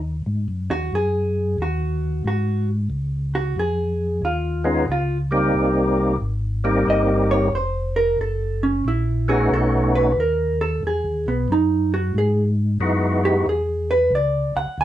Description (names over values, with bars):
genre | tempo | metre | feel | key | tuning
soul jazz organ trio | 91 BPM | 4/4 | swing 66% on 8ths | unclear | A4 = 441 Hz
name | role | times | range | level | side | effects
mellow tonewheel organ | bass | 0.0-14.8 s | F1 to Ab2 | -23 LUFS | equal | chorus vibrato, slow rotary speaker
vintage hollow-body jazz guitar | accompaniment | 0.7-14.8 s | B3 to G#5 | -22 LUFS | right 2 dB | none
percussive tonewheel organ | melody | 4.6-13.5 s | G3 to G4 | -19 LUFS | equal | slow rotary speaker, overdrive, chorus vibrato
room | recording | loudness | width
wet studio reverb, RT60 0.5 s | band playing live in one room, nothing above 10.5 kHz | -18 LUFS | side -12 dB against mid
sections
0.3-14.8 A section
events
hollow-body jazz guitar solo 0.3-14.8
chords
0.3 Ab5; 2.9 Dbadd9; 5.5 Cm7; 8.2 Gbm; 9.5 B7; 10.8 Emaj9; 13.5 E7